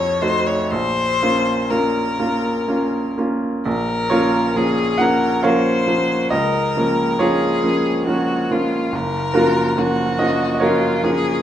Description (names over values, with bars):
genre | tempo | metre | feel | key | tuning
classical, romantic duo for violin and grand piano | 59-73 BPM | 3/4 | rubato | Bb minor | A4 = 440 Hz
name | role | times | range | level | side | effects
clear violin | melody | 0.0-11.4 s | F4 to Db5 | -21 LUFS | left 3 dB | none
clear baby grand piano | accompaniment | 0.0-11.4 s | Gb1 to Gb5 | -18 LUFS | right 1 dB | none
room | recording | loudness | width
wet recital hall reverb, RT60 1.3 s | none | -16 LUFS | side -10 dB against mid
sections
0.0-3.7 A section; 3.7-11.4 B section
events
none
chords
0.0 F7b9; 0.7 Bbm; 6.3 Bbm/Db; 8.9 Gbmaj7